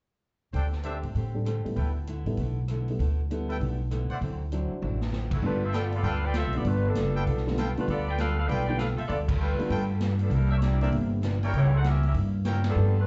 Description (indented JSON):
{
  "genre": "jazz, big band swing",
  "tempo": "197 BPM",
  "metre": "4/4",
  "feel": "swing 62% on 8ths",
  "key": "G mixolydian from 5.4 s",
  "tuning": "A4 = 440 Hz",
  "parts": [
    { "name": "picked steel-string acoustic guitar", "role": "accompaniment", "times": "0.5-13.0 s", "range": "C3 to A4", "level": "-38 LUFS", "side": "equal", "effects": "slapback echo" },
    { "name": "clear trumpet section", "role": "stabs", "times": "0.5-12.8 s", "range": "D4 to G5", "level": "-39 LUFS", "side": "equal", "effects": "slapback echo" },
    { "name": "upright bass", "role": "bass", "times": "0.5-13.1 s", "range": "F#1 to A2", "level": "-29 LUFS", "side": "equal", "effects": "none" },
    { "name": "swinging big-band drum kit", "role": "drums", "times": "0.5-12.7 s", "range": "crash cymbal, hi-hat, kick drum, ride cymbal, rim click, snare drum, toms", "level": "-37 LUFS", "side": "equal", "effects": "none" },
    { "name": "dark baby grand piano", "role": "accompaniment", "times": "1.3-12.9 s", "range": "D3 to C5", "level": "-36 LUFS", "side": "equal", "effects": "none" },
    { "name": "clear saxophone section", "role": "melody", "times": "5.3-13.1 s", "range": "F3 to G5", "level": "-35 LUFS", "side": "equal", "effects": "plate reverb, slapback echo" }
  ],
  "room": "light reverb",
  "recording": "live gig heard through the venue's PA, club reverb, nothing above 7.8 kHz",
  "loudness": "-27 LUFS",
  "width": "mono",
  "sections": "0.5-5.4 A section; 5.4-13.1 B section",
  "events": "drum fill 4.8-5.1; band accent 9.2, 12.6",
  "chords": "0.5 D7sus4; 1.8 G69; 4.2 D9; 5.4 G9; 10.3 C9; 11.5 C#dim7"
}